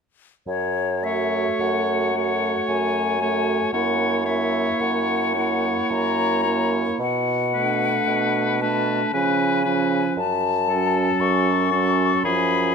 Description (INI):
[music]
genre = classical, slow romantic movement for wind quintet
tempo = 56 BPM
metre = 3/4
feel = uneven beats, rubato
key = F# minor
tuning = A4 = 440 Hz
[part]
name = bright concert flute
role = melody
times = 0.5-12.7 s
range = C#5 to C#6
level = -24 LUFS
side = left 11 dB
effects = none
[part]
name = warm bassoon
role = bass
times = 0.5-12.7 s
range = F#2 to C#3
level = -26 LUFS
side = right 4 dB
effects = none
[part]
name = clear French horn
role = accompaniment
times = 1.0-12.7 s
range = E#3 to A#3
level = -27 LUFS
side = right 1 dB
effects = none
[part]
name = warm clarinet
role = accompaniment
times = 1.0-12.7 s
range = C#4 to F#4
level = -27 LUFS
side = right 12 dB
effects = none
[part]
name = bright oboe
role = second line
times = 1.1-12.7 s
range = G#4 to C#5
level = -26 LUFS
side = left 3 dB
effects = none
[sound]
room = moderate recital hall reverb, RT60 1.8 s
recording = close, detailed microphones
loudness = -19 LUFS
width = side -6 dB against mid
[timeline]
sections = 0.5-12.7 A section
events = none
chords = 0.5 F#m; 3.7 F#7; 7.0 Bm7; 9.1 C#7; 10.2 F#m; 12.2 C#7/F#